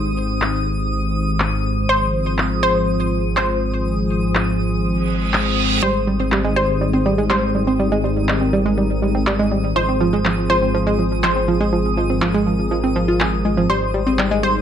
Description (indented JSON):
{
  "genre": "progressive house",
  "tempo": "122 BPM",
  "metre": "4/4",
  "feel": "straight",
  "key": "Ab major",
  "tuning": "A4 = 440 Hz",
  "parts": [
    { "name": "wide unison pluck", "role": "melody", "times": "0.0-14.6 s", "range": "C5", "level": "-22 LUFS", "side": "left 1 dB", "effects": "cassette tape, digital delay" },
    { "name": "lush unison pad", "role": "sustained chords", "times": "0.0-14.6 s", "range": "Eb3 to C5", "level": "-22 LUFS", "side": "left 1 dB", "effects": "chorus" },
    { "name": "dark detuned saw bass", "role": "bass", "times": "0.0-14.6 s", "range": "Ab1", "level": "-23 LUFS", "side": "equal", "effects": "none" },
    { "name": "twinkling granular texture", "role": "texture", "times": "0.0-14.6 s", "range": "Eb6", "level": "-30 LUFS", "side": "right 1 dB", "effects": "built-in reverb" },
    { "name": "electronic handclaps", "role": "drums", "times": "0.4-14.3 s", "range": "none", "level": "-22 LUFS", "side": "equal", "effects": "low-pass filter on snare" },
    { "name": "reverse cymbal", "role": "sound effects", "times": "5.0-5.8 s", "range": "none", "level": "-22 LUFS", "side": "right 6 dB", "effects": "none" },
    { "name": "analog pluck", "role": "arpeggios", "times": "5.8-14.5 s", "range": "F3 to Ab4", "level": "-20 LUFS", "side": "right 2 dB", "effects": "chorus, vintage 12-bit sampler grit, digital delay" }
  ],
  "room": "light reverb",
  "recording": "none",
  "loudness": "-16 LUFS",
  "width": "side -9 dB against mid",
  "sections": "0.0-14.6 A section",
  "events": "filter sweep on analog synth pad 0.0-14.6; reverse cymbal 5.0-5.8",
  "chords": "0.0 Abmaj7; 1.9 Fm/Ab; 5.8 Abmaj7; 9.8 Fm/Ab; 13.7 Abmaj7"
}